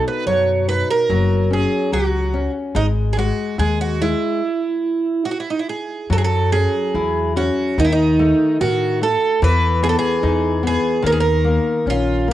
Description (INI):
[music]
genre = fado-style ballad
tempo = 72 BPM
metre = 2/4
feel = rubato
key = unclear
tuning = A4 = 444 Hz
[part]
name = picked twelve-string acoustic guitar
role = melody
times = 0.0-12.3 s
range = D#4 to C#5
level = -19 LUFS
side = right 4 dB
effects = cassette tape, plate reverb
[part]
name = nylon-string guitar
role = accompaniment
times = 0.0-12.3 s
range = B2 to E4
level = -21 LUFS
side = left 6 dB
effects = cassette tape, plate reverb
[part]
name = upright bass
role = bass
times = 0.3-12.3 s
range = F#1 to A2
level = -20 LUFS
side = equal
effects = none
[sound]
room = moderate small room reverb, RT60 0.5 s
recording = home recording on cassette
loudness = -16 LUFS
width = side -13 dB against mid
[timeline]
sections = 0.0-6.1 A section; 6.1-12.3 B section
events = stop 4.4-6.1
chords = 0.0 B; 1.1 F#5; 2.8 G#5; 4.4 N.C.; 6.1 F#5; 7.8 D#dim; 9.4 Emaj7; 11.0 D#5